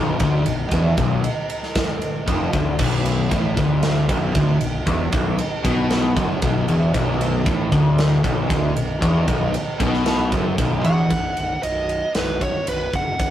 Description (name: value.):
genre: hard rock.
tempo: 116 BPM.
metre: 4/4.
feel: straight.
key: unclear.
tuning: A4 = 440 Hz.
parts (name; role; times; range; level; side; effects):
cranked stack guitar; riff; 0.0-11.1 s; B1 to B2; -28 LUFS; right 2 dB; none.
overdriven semi-hollow guitar; riff; 0.0-11.1 s; B1 to B2; -22 LUFS; left 2 dB; none.
overdriven semi-hollow guitar; riff; 0.0-11.1 s; B1 to B2; -23 LUFS; equal; phaser.
fuzz fingered electric bass; bass; 0.0-13.3 s; B0 to B1; -27 LUFS; right 1 dB; overdrive.
big rock drum kit; drums; 0.2-13.3 s; crash cymbal, kick drum, ride cymbal, snare drum; -23 LUFS; right 1 dB; none.
smooth overdriven lead guitar; melody; 10.9-13.3 s; B4 to F#5; -23 LUFS; right 1 dB; none.
room: moderate studio reverb, RT60 0.6 s.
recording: rough rehearsal-room recording, tube saturation.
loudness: -18 LUFS.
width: side -11 dB against mid.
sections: 0.0-11.1 A section; 11.1-13.3 B section.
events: none.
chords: 0.0 B5; 11.1 B.